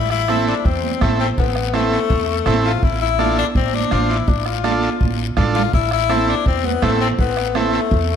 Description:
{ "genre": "latin, cumbia", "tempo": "165 BPM", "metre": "4/4", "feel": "straight", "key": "A minor", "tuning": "A4 = 442 Hz", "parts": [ { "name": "bright tenor saxophone", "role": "second line", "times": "0.0-8.2 s", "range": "A3 to F4", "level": "-20 LUFS", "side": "left 10 dB", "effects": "tape echo" }, { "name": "upright bass", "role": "bass", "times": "0.0-8.2 s", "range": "A1 to E2", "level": "-22 LUFS", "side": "equal", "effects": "none" }, { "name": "bombo", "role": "percussion", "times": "0.1-8.1 s", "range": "none", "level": "-22 LUFS", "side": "right 1 dB", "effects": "none" }, { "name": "combo organ", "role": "accompaniment", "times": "0.3-7.8 s", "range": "C4 to C5", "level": "-23 LUFS", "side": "right 4 dB", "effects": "none" }, { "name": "congas", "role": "percussion", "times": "0.3-7.7 s", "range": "none", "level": "-26 LUFS", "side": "right 9 dB", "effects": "none" }, { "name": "guiro", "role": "percussion", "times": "0.3-8.2 s", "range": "none", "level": "-32 LUFS", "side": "left 14 dB", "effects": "none" } ], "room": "moderate plate reverb, RT60 2.3 s", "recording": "dreamy mix soaked in reverb", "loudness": "-15 LUFS", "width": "side -8 dB against mid", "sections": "0.0-8.2 A section", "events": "tenor saxophone solo 0.0-8.2; drum fill 5.0-5.7", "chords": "0.0 Am; 2.8 Dm/A; 5.7 Amadd9" }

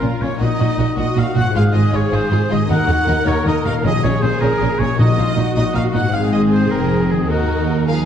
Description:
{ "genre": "cinematic, heroic adventure film score", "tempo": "104 BPM (dotted quarters)", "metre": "6/8", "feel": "straight", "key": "unclear", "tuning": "A4 = 440 Hz", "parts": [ { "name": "warm symphonic violin section", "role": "melody", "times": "0.0-8.1 s", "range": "C4 to F5", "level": "-26 LUFS", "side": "left 4 dB", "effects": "none" }, { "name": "clear oboe", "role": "second line", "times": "0.0-7.9 s", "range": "Gb4 to Gb5", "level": "-24 LUFS", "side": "equal", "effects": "none" }, { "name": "warm symphonic violin section", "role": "second line", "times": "0.0-8.0 s", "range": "Gb4 to Gb5", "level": "-27 LUFS", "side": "left 1 dB", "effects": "none" }, { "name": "warm symphonic viola section", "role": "accompaniment", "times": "0.0-8.1 s", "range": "Eb4 to Bb4", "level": "-24 LUFS", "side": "equal", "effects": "none" }, { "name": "concert harp", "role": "arpeggios", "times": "0.0-8.1 s", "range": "Ab2 to C5", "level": "-23 LUFS", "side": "left 9 dB", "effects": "none" }, { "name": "dark symphonic cello section", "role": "bass", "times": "0.0-8.0 s", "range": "Eb2 to F3", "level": "-20 LUFS", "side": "right 1 dB", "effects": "none" }, { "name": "warm symphonic double bass section", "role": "bass", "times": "0.0-8.1 s", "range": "F1 to Eb2", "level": "-21 LUFS", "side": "right 4 dB", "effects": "none" }, { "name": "timpani", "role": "percussion", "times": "3.9-5.5 s", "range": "Bb2", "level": "-22 LUFS", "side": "left 2 dB", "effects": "none" } ], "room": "moderate scoring stage reverb, RT60 1.8 s", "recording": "dark, warm production", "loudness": "-14 LUFS", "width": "side -8 dB against mid", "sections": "0.0-8.1 A section", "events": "none", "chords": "0.4 Ebm/Bb; 1.6 Ab6; 2.7 Ebm; 3.8 Bbm; 5.0 Ebm/Bb; 6.1 Ab6; 7.3 Ebm" }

